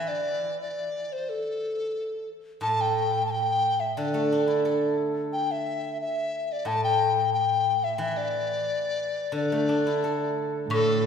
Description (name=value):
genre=chinese traditional, Chinese chamber ensemble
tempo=89 BPM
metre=2/4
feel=straight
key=unclear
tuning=A4 = 440 Hz
part: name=mellow hollow large dizi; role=melody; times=0.0-11.1 s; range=A4 to A5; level=-26 LUFS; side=left 3 dB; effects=none
part: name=steel-string zither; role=accompaniment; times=0.0-11.1 s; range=A2 to A4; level=-28 LUFS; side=right 1 dB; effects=none
part: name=dark cello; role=second line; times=10.7-11.1 s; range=A2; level=-29 LUFS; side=right 6 dB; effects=none
part: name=woodblock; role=percussion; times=10.7-10.9 s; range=none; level=-32 LUFS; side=left 3 dB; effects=none
room=wet concert hall reverb, RT60 2.5 s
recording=heard from further back in the room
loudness=-24 LUFS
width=side -7 dB against mid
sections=0.0-10.7 A section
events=none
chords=none